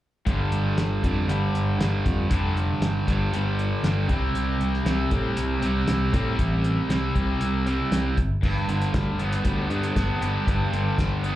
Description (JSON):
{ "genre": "classic rock", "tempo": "118 BPM", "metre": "4/4", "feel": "straight", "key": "G major", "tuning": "A4 = 443 Hz", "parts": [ { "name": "crunchy overdriven guitar", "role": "riff", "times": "0.3-11.4 s", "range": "G2 to G4", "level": "-30 LUFS", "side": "left 8 dB", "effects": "slapback echo" }, { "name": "distorted electric guitar", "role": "riff", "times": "0.3-11.4 s", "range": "G2 to C4", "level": "-27 LUFS", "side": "right 4 dB", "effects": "distortion, slapback echo" }, { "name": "picked electric bass", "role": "bass", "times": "0.3-11.3 s", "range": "F1 to A2", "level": "-25 LUFS", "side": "equal", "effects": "none" }, { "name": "cloth-damped thuddy drum kit", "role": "drums", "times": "0.3-11.4 s", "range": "crash cymbal, hi-hat, kick drum, snare drum", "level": "-27 LUFS", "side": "equal", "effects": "none" } ], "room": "light reverb", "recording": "live gig heard through the venue's PA, club reverb", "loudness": "-22 LUFS", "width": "side -14 dB against mid", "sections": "0.3-8.4 A section; 8.4-11.4 B section", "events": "none", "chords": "0.3 G5; 4.1 C5; 8.2 N.C.; 8.4 G" }